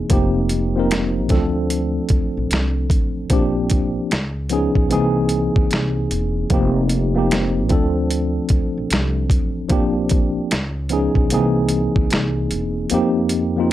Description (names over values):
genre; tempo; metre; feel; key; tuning
lo-fi hip hop; 75 BPM; 4/4; swing 65% on 16ths; unclear; A4 = 440 Hz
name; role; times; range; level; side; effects
mellow tine electric piano; accompaniment; 0.0-13.7 s; D#3 to Bb4; -20 LUFS; equal; medium stereo tremolo
upright bass; bass; 0.0-13.7 s; E1 to F2; -23 LUFS; equal; none
boom bap sampler-style drum kit; drums; 0.1-13.5 s; finger snaps, hi-hat, kick drum, snare drum; -19 LUFS; equal; none
room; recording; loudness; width
little or no reverb; dry, gritty hardware recording; -16 LUFS; side -13 dB against mid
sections
0.0-13.7 A section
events
kick muted 12.9-13.7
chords
0.1 F7sus4; 1.3 Dm7; 3.3 Bb6; 4.1 Db9; 4.9 C7alt; 6.5 F7sus4; 7.7 Dm7; 9.7 Bb6; 10.5 Db9; 11.3 C7alt; 12.9 F7sus4